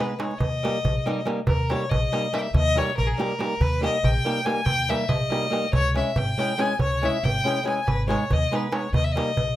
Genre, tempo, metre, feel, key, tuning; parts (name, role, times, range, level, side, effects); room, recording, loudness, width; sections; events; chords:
balkan folk, Balkan wedding band; 281 BPM (eighths); 5/8; straight; Eb phrygian dominant; A4 = 439 Hz
rich fiddle; melody; 0.0-9.6 s; Ab4 to Ab5; -26 LUFS; left 2 dB; slapback echo, plate reverb
flamenco guitar; accompaniment; 0.0-9.3 s; G3 to Ab4; -28 LUFS; equal; plate reverb
darbuka; percussion; 0.0-9.5 s; -27 LUFS; right 1 dB
upright bass; bass; 0.4-9.5 s; Ab1 to Eb2; -26 LUFS; equal
light reverb; rough home demo mix; -21 LUFS; side -14 dB against mid
0.0-1.5 A section; 1.5-9.6 A section
0.4 Eb; 5.7 Dbm; 7.9 Abm; 8.9 Eb